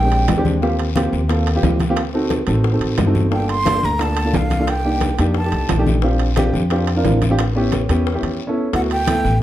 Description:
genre	Afro-Cuban jazz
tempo	177 BPM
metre	4/4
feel	straight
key	unclear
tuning	A4 = 440 Hz
part	breathy mellow silver concert flute	melody	0.0-0.5, 3.3-5.8, 8.8-9.4 s	F5 to C6	-22 LUFS	right 2 dB	none
part	warm baby grand piano	accompaniment	0.0-9.4 s	Ab3 to Bb4	-20 LUFS	right 1 dB	none
part	upright bass	bass	0.0-9.4 s	G1 to F2	-19 LUFS	equal	none
part	congas	percussion	0.1-9.4 s	none	-24 LUFS	left 1 dB	none
part	timbales	percussion	0.1-9.2 s	none	-27 LUFS	right 6 dB	none
part	bongos	percussion	0.3-9.4 s	none	-29 LUFS	left 7 dB	none
part	guiro	percussion	0.3-9.4 s	none	-36 LUFS	left 7 dB	none
room	moderate large studio reverb, RT60 0.9 s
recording	dark, warm production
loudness	-15 LUFS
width	side -13 dB against mid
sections	0.0-8.7 A section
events	none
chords	0.0 Bb13; 0.6 Eb69; 2.0 D7b9; 3.3 Gm9; 4.7 Cm9; 5.4 F13; 6.0 Bb69; 7.4 A7; 8.7 D6

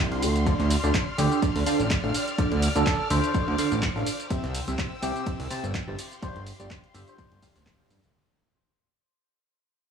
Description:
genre	piano house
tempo	125 BPM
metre	4/4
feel	swing 55% on 16ths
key	D minor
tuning	A4 = 440 Hz
part	dark studio string section	sustained chords	0.0-8.1 s	G4 to F6	-35 LUFS	left 4 dB	sidechain pumping
part	fat analog bass	bass	0.0-8.1 s	D1 to G2	-26 LUFS	right 2 dB	sidechain pumping
part	barking FM electric piano	riff	0.1-7.9 s	C3 to A5	-29 LUFS	right 2 dB	phaser, sidechain pumping, tape echo
part	loose indie drum kit	drums	0.1-8.1 s	ride cymbal, snare drum	-42 LUFS	left 1 dB	none
part	punchy analog drum machine	drums	0.1-8.1 s	handclaps, hi-hat, ride cymbal, shaker	-33 LUFS	right 1 dB	none
part	electronic kick drum	drums	0.5-7.8 s	none	-29 LUFS	equal	none
part	trumpet with cup mute	melody	1.2-7.4 s	G4 to C5	-34 LUFS	equal	tape echo
room	studio reverb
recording	small room ambience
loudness	-23 LUFS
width	side -7 dB against mid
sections	0.0-8.1 A section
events	drop 0.0-8.1; fade-out 3.0-8.1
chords	0.5 Dm7; 4.3 C; 6.0 G7sus4

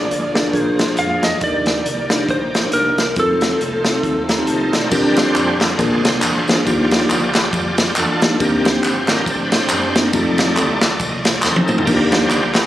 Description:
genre	uptempo gospel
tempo	138 BPM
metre	4/4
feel	swing 58% on 8ths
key	Bb major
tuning	A4 = 443 Hz
part	clean lap steel guitar	melody	0.0-4.5 s	A4 to F5	-20 LUFS	equal	slapback echo
part	mellow tine electric piano	accompaniment	0.0-12.5 s	Bb2 to Bb5	-19 LUFS	left 1 dB	medium stereo tremolo
part	bright tonewheel organ	sustained chords	0.0-12.7 s	D3 to Eb5	-21 LUFS	right 1 dB	slow rotary speaker, overdrive, chorus vibrato
part	fingered electric bass	bass	0.0-12.7 s	G1 to Gb2	-30 LUFS	equal	none
part	swinging big-band drum kit	drums	0.1-12.6 s	crash cymbal, hi-hat, kick drum, ride cymbal, snare drum, toms	-18 LUFS	equal	none
part	tambourine and handclaps	percussion	4.9-12.6 s	none	-23 LUFS	equal	none
room	light reverb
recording	recorded on a phone in the room, club reverb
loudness	-14 LUFS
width	side -13 dB against mid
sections	0.0-4.9 A section; 4.9-12.7 B section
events	tine electric piano fill 4.0-4.9; tonewheel organ solo 4.9-12.7; drum fill 11.4-11.9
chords	0.0 Bb7; 1.4 Ebmaj7; 3.2 F7; 4.9 Bb69; 5.8 Bb7; 6.7 Ebmaj9; 8.4 Cm9; 10.1 F7; 11.9 Ebmaj7

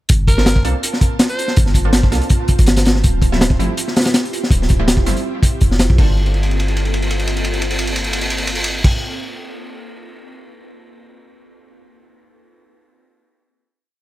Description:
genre	drum and bass, jungle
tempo	163 BPM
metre	4/4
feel	swing 54% on 16ths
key	G minor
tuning	A4 = 441 Hz
part	ethereal airy pad	sustained chords	0.6-8.9 s	Bb3 to A5	-27 LUFS	equal	ensemble chorus, built-in reverb
part	warm 808-style bass	bass	0.1-8.9 s	D1 to C2	-17 LUFS	equal	none
part	crunchy breakbeat drum kit	drums	0.1-10.4 s	crash cymbal, hi-hat, kick drum, ride cymbal, snare drum	-15 LUFS	equal	none
part	raspy alto saxophone	melody	0.3-1.6 s	Bb4 to C5	-26 LUFS	equal	vintage 12-bit sampler grit, dub echo
part	orchestra-hit-like synth stab	stabs	0.4-8.9 s	F3 to A4	-26 LUFS	right 2 dB	built-in reverb, dub echo
room	studio ambience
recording	none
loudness	-13 LUFS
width	side -16 dB against mid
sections	0.1-6.0 drop; 6.0-8.9 final chord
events	drop 0.1-6.0; drum fill 6.2-8.8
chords	0.1 Gm11; 3.0 Dm11; 6.0 Gm11

